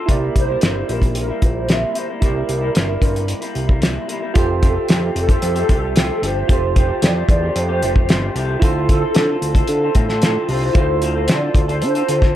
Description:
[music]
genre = indie pop, bedroom pop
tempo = 112 BPM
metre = 4/4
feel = straight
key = F major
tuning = A4 = 440 Hz
[part]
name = electric guitar through a small old amp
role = accompaniment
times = 0.0-12.3 s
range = C3 to A4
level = -25 LUFS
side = left 2 dB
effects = lush chorus, warbly pitch drift
[part]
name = soft electric-piano-like synth keys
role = accompaniment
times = 0.0-12.4 s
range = E4 to D5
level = -26 LUFS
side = right 6 dB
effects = chorus, cassette tape
[part]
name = fat analog bass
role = bass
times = 0.1-12.4 s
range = F1 to D3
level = -22 LUFS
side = equal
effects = none
[part]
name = cloth-damped thuddy drum kit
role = drums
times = 0.1-12.3 s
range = hi-hat, kick drum, snare drum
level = -16 LUFS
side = equal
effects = none
[part]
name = hollow clarinet-like synth lead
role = melody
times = 0.4-12.4 s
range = A4 to E5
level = -23 LUFS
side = equal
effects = ensemble chorus
[sound]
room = light reverb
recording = none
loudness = -15 LUFS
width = side -12 dB against mid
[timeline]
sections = 0.0-4.4 A section; 4.4-12.4 B section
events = none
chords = 0.1 C7; 4.4 Fadd9; 8.6 Dm7

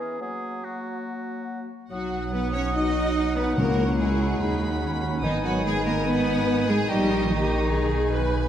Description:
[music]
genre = classical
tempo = 145 BPM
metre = 4/4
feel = straight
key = B major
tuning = A4 = 439 Hz
[part]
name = dark clarinet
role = second line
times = 0.0-8.5 s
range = A#3 to E4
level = -34 LUFS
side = left 4 dB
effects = none
[part]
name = mellow concert flute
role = second line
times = 0.0-8.3 s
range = F#5 to D#6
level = -37 LUFS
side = equal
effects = none
[part]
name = warm oboe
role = second line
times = 0.0-8.3 s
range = F#4 to A#5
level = -35 LUFS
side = equal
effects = none
[part]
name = mellow bassoon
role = accompaniment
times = 0.0-8.2 s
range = D#3 to F#3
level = -35 LUFS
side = right 3 dB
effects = none
[part]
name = rich chamber violin section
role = melody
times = 1.9-8.5 s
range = F#5 to D#6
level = -37 LUFS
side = left 1 dB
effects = none
[part]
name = rich symphonic violin section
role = second line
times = 1.9-8.3 s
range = D#4 to D#5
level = -31 LUFS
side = left 2 dB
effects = none
[part]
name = mellow French horn section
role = sustained chords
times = 1.9-8.3 s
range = D#3 to D#4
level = -30 LUFS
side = left 4 dB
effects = none
[part]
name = rich symphonic cello section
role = bass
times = 1.9-8.3 s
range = D#3 to D#4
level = -28 LUFS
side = right 2 dB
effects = none
[part]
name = rich symphonic double bass section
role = bass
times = 1.9-8.5 s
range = G#1 to D#2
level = -28 LUFS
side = right 2 dB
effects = none
[part]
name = warm symphonic viola section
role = accompaniment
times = 2.8-8.5 s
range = B3 to B4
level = -31 LUFS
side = right 1 dB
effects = none
[part]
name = timpani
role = percussion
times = 3.6-4.2 s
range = C#3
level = -27 LUFS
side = left 2 dB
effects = none
[sound]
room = wet concert hall reverb, RT60 2.1 s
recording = none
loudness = -22 LUFS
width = side -10 dB against mid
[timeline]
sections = 0.0-1.9 A section; 1.9-8.5 A section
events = none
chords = 0.2 F#; 1.9 B; 3.6 F#7/C#; 4.4 B/D#; 5.2 G#m; 6.9 D#7/A#; 7.7 G#m/B

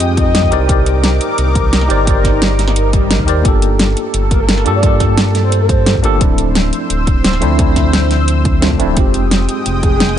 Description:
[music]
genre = liquid drum and bass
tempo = 174 BPM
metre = 4/4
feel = straight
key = G minor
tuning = A4 = 440 Hz
[part]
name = breathy flute-like synth lead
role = melody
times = 0.0-0.6, 4.3-6.0, 9.8-10.1 s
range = Ab4 to Eb5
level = -22 LUFS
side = left 1 dB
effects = lush chorus, dub echo
[part]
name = tine electric piano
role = accompaniment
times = 0.0-10.2 s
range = F3 to D5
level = -18 LUFS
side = equal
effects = overdrive, fast stereo tremolo, digital delay
[part]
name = lush unison pad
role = sustained chords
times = 0.0-10.2 s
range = Ab3 to E6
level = -22 LUFS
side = equal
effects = chorus, phaser, sidechain pumping
[part]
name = smooth gliding synth bass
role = bass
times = 0.0-10.2 s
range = D1 to G2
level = -15 LUFS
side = equal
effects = none
[part]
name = pop drum kit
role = drums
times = 0.0-10.2 s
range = hi-hat, snare drum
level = -17 LUFS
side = equal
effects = overdrive
[part]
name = electronic kick drum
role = drums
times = 0.2-9.9 s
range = none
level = -15 LUFS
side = equal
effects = overdrive
[part]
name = swell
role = sound effects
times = 2.9-3.5 s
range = none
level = -26 LUFS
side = left 3 dB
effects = none
[sound]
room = digital ambience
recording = nothing above 10.5 kHz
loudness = -10 LUFS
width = side -10 dB against mid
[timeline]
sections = 0.0-10.2 A section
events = swell 2.9-3.5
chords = 0.0 Fm9; 0.5 Cm9; 3.5 Gm9; 6.2 Dm9; 9.0 Fm9

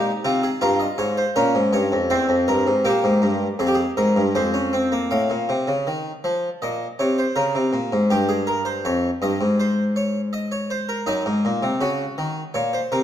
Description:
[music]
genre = classical, baroque-style 3-part fugue for harpsichord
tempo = 80 BPM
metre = 4/4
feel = straight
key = unclear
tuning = A4 = 441 Hz
[part]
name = harpsichord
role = solo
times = 0.0-13.0 s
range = E2 to F5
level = -19 LUFS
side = equal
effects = none
[sound]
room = wet recital hall reverb, RT60 1.5 s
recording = dark, warm production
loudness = -19 LUFS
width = side -10 dB against mid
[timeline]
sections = 0.0-5.1 A section; 5.1-13.0 B section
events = none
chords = 0.0 Fm; 0.6 Gm7b5; 2.1 C7(no3); 3.6 Fm; 5.1 F7(no3); 6.6 Bbm; 8.1 Eb7/G; 9.6 Ab; 11.1 Ebm/Gb

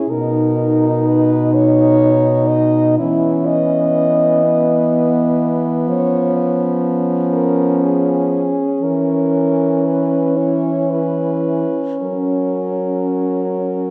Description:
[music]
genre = classical, lyrical piece for horn quartet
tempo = 35-42 BPM (dotted quarters)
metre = 6/8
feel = rubato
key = unclear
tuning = A4 = 438 Hz
[part]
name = warm French horn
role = melody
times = 0.0-13.9 s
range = E4 to D#5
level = -22 LUFS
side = equal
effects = none
[part]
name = dark French horn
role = second line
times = 0.0-13.9 s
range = B3 to E4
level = -21 LUFS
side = equal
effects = none
[part]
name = warm French horn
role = accompaniment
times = 0.0-13.9 s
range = B3 to D#4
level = -23 LUFS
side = equal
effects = none
[part]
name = warm French horn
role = bass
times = 0.1-13.9 s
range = B2 to F#3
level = -22 LUFS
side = equal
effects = none
[sound]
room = moderate concert hall reverb, RT60 2.1 s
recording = dark, warm production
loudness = -16 LUFS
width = mono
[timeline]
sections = 0.0-13.9 A section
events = none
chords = 0.1 B; 3.0 E5; 5.9 C#7/E#; 8.8 C#m7/E; 12.0 F#

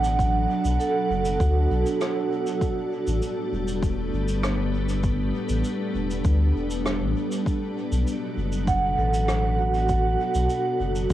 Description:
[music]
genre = ambient dub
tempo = 99 BPM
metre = 4/4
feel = straight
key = B minor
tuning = A4 = 440 Hz
[part]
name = soft additive organ-like pad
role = sustained chords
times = 0.0-11.1 s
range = A2 to A4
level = -28 LUFS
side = equal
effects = ensemble chorus, built-in reverb
[part]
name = vibraphone with soft mallets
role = arpeggios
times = 0.0-3.8, 8.7-11.1 s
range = F#4 to F#5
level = -26 LUFS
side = right 3 dB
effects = tape echo
[part]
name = warm sub bass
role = bass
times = 0.0-11.1 s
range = E1 to D2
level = -24 LUFS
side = equal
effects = transformer saturation
[part]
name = cabasa and rim click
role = drums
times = 0.0-11.1 s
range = none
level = -36 LUFS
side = equal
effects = cassette tape, dub echo
[part]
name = electronic kick drum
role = drums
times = 0.2-11.1 s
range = none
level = -26 LUFS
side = equal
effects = overdrive, cassette tape
[sound]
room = moderate studio reverb, RT60 0.5 s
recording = home recording on cassette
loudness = -22 LUFS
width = side -13 dB against mid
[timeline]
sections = 0.0-11.1 A section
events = none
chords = 0.0 Bm7; 2.6 A7sus4; 7.5 Bm7

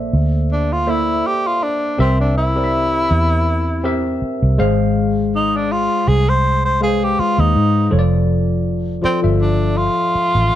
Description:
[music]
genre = lush 1970s-style soul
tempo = 81 BPM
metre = 4/4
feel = swing 54% on 16ths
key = unclear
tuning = A4 = 440 Hz
[part]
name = tine electric piano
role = accompaniment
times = 0.0-10.6 s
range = F3 to F5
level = -20 LUFS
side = left 2 dB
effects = lush chorus
[part]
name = vintage muted fingered electric bass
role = bass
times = 0.0-10.5 s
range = F1 to Ab2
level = -17 LUFS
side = equal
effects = none
[part]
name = breathy tenor saxophone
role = melody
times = 0.5-10.6 s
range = C4 to C5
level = -18 LUFS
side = equal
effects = none
[sound]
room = light reverb, small room ambience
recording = dark, warm production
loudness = -14 LUFS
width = side -12 dB against mid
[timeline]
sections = 0.0-7.9 A section; 7.9-10.6 B section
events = tenor saxophone solo 0.0-7.9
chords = 0.0 Bbmaj9#11; 2.0 C7; 4.6 Ab6; 7.9 F6

